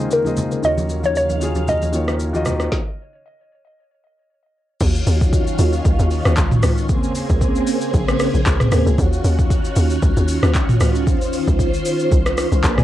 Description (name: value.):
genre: amapiano.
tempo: 115 BPM.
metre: 4/4.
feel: swing 55% on 16ths.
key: Eb dorian.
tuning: A4 = 440 Hz.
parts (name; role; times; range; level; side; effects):
warm concert grand piano; accompaniment; 0.0-2.7 s; Eb3 to Eb5; -24 LUFS; left 1 dB; low-pass filter, cassette tape.
ensemble organ-string; sustained chords; 0.0-12.8 s; Eb2 to F5; -22 LUFS; equal; phaser, ensemble chorus, sidechain pumping, low-pass filter, cassette tape.
afro-pop drum kit; drums; 0.0-12.8 s; crash cymbal, handclaps, hi-hat, kick drum, rim click, shaker, snare drum, toms; -19 LUFS; equal; overdrive.
hollow square pluck; melody; 0.1-4.3 s; Bb4 to Eb5; -21 LUFS; left 1 dB; chorus, low-pass filter, cassette tape, tape echo.
congas; percussion; 0.2-2.6 s; none; -27 LUFS; right 2 dB; none.
saturated sub bass; bass; 0.6-2.7 s; Eb2; -23 LUFS; equal; none.
hollow log drum bass; bass; 4.8-12.8 s; Bb1 to Eb2; -18 LUFS; equal; none.
room: little or no reverb.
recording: home recording on cassette.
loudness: -15 LUFS.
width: side -13 dB against mid.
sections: 0.0-4.8 A section; 4.8-12.8 B section.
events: stop 2.7-4.8; drop 4.8-12.8.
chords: 0.0 Bbm9/Eb; 0.6 Ebm9; 2.7 N.C.; 4.8 Ebm9; 6.9 Bbm9; 9.0 Ebm9; 11.1 Dbmaj9.